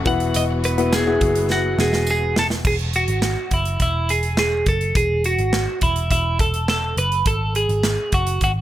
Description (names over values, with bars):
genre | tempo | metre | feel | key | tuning
piano-driven pop | 104 BPM | 4/4 | straight | E major | A4 = 441 Hz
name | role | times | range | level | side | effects
twelve-string electric guitar | melody | 0.0-8.5 s | E4 to F#5 | -21 LUFS | right 1 dB | none
clear upright piano | accompaniment | 0.0-2.7 s | E3 to B4 | -23 LUFS | left 6 dB | none
warm studio string section | sustained chords | 0.0-2.6 s | E3 to F#4 | -33 LUFS | left 1 dB | none
vintage muted picked electric bass | bass | 0.1-8.6 s | E1 to G#1 | -23 LUFS | equal | none
modern studio drum kit | drums | 0.1-8.5 s | crash cymbal, handclaps, hi-hat, kick drum, snare drum | -23 LUFS | right 1 dB | none
tambourine | percussion | 0.9-2.2 s | none | -32 LUFS | right 6 dB | none
room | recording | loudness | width
small room ambience | none | -17 LUFS | side -13 dB against mid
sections
0.0-2.6 A section; 2.6-8.6 B section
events
drum fill 1.5-2.6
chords
0.1 Esus2; 7.3 G#7(no3)